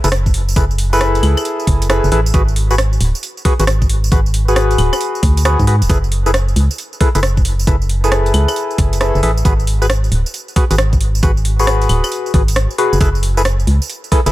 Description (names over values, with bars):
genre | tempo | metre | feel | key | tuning
UK garage, two-step garage | 135 BPM | 4/4 | swing 65% on 16ths | F# minor | A4 = 440 Hz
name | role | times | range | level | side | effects
percussive organ stab | stabs | 0.0-14.3 s | E4 to B4 | -18 LUFS | left 1 dB | chorus, tape echo
organ-like FM bass | bass | 0.0-14.3 s | D1 to G#2 | -14 LUFS | equal | none
garage drum kit | drums | 0.0-14.3 s | claves, hi-hat, rim click, tambourine | -21 LUFS | right 1 dB | overdrive
electronic kick drum | drums | 0.3-14.2 s | none | -14 LUFS | equal | overdrive
room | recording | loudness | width
little or no reverb | none | -12 LUFS | side -16 dB against mid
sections
0.0-14.3 A section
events
none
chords
0.0 F#m11; 2.3 G#m7b5; 5.9 F#m11; 9.5 G#m7; 13.0 F#m11